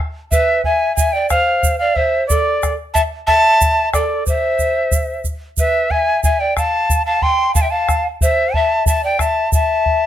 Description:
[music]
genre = andean folk, Andean ensemble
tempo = 91 BPM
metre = 2/4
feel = straight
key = A harmonic minor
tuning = A4 = 440 Hz
[part]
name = bright reedy quena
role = melody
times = 0.3-10.1 s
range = D5 to C6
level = -16 LUFS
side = right 1 dB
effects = plate reverb
[part]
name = mellow hollow pan flute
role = second line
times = 0.3-10.1 s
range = A4 to G5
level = -19 LUFS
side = left 3 dB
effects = none
[part]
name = bombo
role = percussion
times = 0.3-10.0 s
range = none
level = -19 LUFS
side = equal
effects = none
[part]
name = egg shaker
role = percussion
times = 0.3-9.7 s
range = none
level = -24 LUFS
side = right 8 dB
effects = none
[sound]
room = moderate studio reverb, RT60 0.6 s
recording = close, detailed microphones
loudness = -14 LUFS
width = side -11 dB against mid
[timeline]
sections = 0.3-10.1 A section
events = none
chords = none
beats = | 0.31 0.97 | 1.63 2.29 | 2.95 3.61 | 4.26 4.92 | 5.58 6.24 | 6.89 7.55 | 8.21 8.86 | 9.52

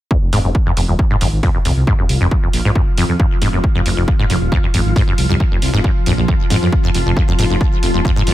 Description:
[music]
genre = driving peak-time techno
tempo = 136 BPM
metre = 4/4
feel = straight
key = F phrygian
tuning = A4 = 440 Hz
[part]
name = acid bass, saw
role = riff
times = 0.1-8.3 s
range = F2 to Ab2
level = -19 LUFS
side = equal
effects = wide subtle chorus, sidechain pumping, digital delay
[part]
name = swarming drone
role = drone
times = 1.3-8.3 s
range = F3 to F4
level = -23 LUFS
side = left 1 dB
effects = built-in reverb, sidechain pumping
[part]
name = electronic kick drum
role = drums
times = 0.1-8.1 s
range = none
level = -16 LUFS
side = equal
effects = overdrive
[part]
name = dark detuned saw bass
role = bass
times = 0.2-8.3 s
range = Eb1 to F2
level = -18 LUFS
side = equal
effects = sidechain pumping
[part]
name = electronic hi-hat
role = drums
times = 0.3-8.3 s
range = none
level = -25 LUFS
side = right 2 dB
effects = none
[sound]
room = little or no reverb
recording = none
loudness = -13 LUFS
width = side -14 dB against mid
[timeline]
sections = 0.1-8.3 A section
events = none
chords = 0.1 Fm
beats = | 0.11 0.55 0.99 1.43 | 1.87 2.31 2.75 3.20 | 3.64 4.08 4.52 4.96 | 5.40 5.84 6.28 6.72 | 7.17 7.61 8.05

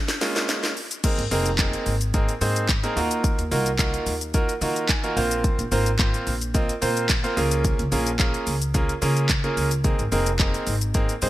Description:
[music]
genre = dance-pop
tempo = 109 BPM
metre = 4/4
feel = straight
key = unclear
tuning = A4 = 440 Hz
[part]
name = house drum kit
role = drums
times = 0.1-11.3 s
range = crash cymbal, handclaps, hi-hat, kick drum, shaker, snare drum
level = -24 LUFS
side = equal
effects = gated reverb
[part]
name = bright concert grand piano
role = accompaniment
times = 0.2-11.3 s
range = Ab3 to Ab5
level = -25 LUFS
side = right 2 dB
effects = sidechain pumping
[part]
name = upright bass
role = bass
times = 1.2-11.3 s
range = F1 to Eb3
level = -26 LUFS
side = equal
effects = sidechain pumping
[sound]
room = digital ambience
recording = bright 1980s-style digital production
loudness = -20 LUFS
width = side -15 dB against mid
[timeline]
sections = 0.0-1.0 A section; 1.0-11.3 B section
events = build-up 0.0-1.0; drum fill 0.0-1.0; drop 1.0-11.3; grand piano fill 4.6-5.4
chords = 0.0 Db6; 1.0 Abadd9; 3.0 Ebmadd9; 5.2 Bbsus2; 7.4 Db6; 9.8 Abadd9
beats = 0.49 | 1.04 1.59 2.14 2.69 | 3.24 3.79 4.34 4.89 | 5.44 5.99 6.54 7.09 | 7.64 8.20 8.75 9.30 | 9.85 10.40 10.95

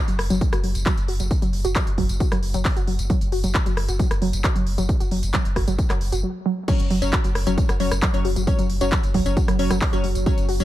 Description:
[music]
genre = driving peak-time techno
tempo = 134 BPM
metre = 4/4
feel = straight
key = unclear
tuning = A4 = 441 Hz
[part]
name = warbly dusty pluck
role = riff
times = 0.1-10.6 s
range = F#3 to F#4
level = -27 LUFS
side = right 1 dB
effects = chorus, sidechain pumping, dub echo
[part]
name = saturated sub bass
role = bass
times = 0.1-10.6 s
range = F#1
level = -26 LUFS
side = equal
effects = tube saturation, sidechain pumping, low-pass filter
[part]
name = techno drum kit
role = drums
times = 0.1-10.6 s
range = crash cymbal, handclaps, hi-hat, rim click, tambourine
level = -28 LUFS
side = equal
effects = none
[part]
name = electronic kick drum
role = drums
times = 0.4-10.4 s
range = none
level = -22 LUFS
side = equal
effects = none
[part]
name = wavetable chord stab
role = stabs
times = 6.7-10.6 s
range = F#3 to C#5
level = -26 LUFS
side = left 3 dB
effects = sidechain pumping, ping-pong delay
[part]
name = deep dark ambient pad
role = drone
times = 7.4-10.6 s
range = F#3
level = -32 LUFS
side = right 3 dB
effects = chorus, built-in reverb, sidechain pumping
[sound]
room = little or no reverb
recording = none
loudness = -19 LUFS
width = side -14 dB against mid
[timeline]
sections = 0.0-6.7 A section; 6.7-10.6 B section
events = break 6.2-6.7; drop 6.7-10.6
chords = 0.0 F#5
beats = 0.41 0.86 | 1.31 1.75 2.20 2.65 | 3.10 3.55 3.99 4.44 | 4.89 5.34 5.79 6.23 | 6.68 7.13 7.58 8.02 | 8.47 8.92 9.37 9.81 | 10.26

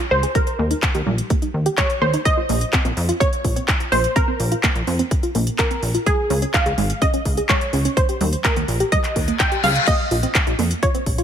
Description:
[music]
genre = progressive house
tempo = 126 BPM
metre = 4/4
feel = straight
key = Bb dorian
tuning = A4 = 440 Hz
[part]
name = wide unison pluck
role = melody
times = 0.0-11.2 s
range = Ab4 to G5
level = -22 LUFS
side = right 1 dB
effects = cassette tape, sidechain pumping, tape echo
[part]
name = wide unison pluck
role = arpeggios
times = 0.0-11.2 s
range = G3 to Ab4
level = -25 LUFS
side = right 1 dB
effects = sidechain pumping, tape echo
[part]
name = plucky analog bass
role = bass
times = 0.1-11.2 s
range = Ab1 to F2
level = -22 LUFS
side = equal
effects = sidechain pumping
[part]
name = house drum kit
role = drums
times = 0.2-11.2 s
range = crash cymbal, handclaps, hi-hat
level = -24 LUFS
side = equal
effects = none
[part]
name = electronic kick drum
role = drums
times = 0.3-11.2 s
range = none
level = -21 LUFS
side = equal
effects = none
[part]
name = reverse cymbal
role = sound effects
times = 9.2-9.9 s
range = none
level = -26 LUFS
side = left 6 dB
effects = none
[sound]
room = light reverb, digital ambience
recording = none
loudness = -17 LUFS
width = side -8 dB against mid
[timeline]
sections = 0.0-11.2 A section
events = filter sweep on synth pluck 0.0-11.2; reverse cymbal 9.2-9.9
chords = 0.3 Eb5; 2.3 Bb5; 6.1 Db; 8.0 Eb; 9.9 Bbm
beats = | 0.35 0.83 1.30 1.78 | 2.25 2.73 3.21 3.68 | 4.16 4.64 5.11 5.59 | 6.07 6.54 7.02 7.49 | 7.97 8.45 8.92 9.40 | 9.87 10.35 10.83

